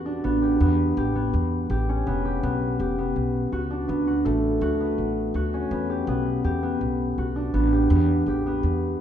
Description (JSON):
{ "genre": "contemporary instrumental, chamber music in an uneven meter", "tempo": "164 BPM", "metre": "5/4", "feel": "straight", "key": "E dorian", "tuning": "A4 = 440 Hz", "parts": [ { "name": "concert harp", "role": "arpeggios", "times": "0.0-9.0 s", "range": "A3 to G4", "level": "-23 LUFS", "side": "equal", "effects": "none" }, { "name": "upright bass", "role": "bass", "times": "0.0-9.0 s", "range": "E1 to E2", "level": "-26 LUFS", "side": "equal", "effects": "none" } ], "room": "wet recital hall reverb, RT60 1.6 s", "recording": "dark, warm production, nothing above 10.4 kHz", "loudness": "-21 LUFS", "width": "side -9 dB against mid", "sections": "0.0-9.0 A section", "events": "none", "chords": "0.2 A7sus2; 2.1 Emadd9; 3.9 D6; 5.7 Emadd9; 7.5 A7sus2" }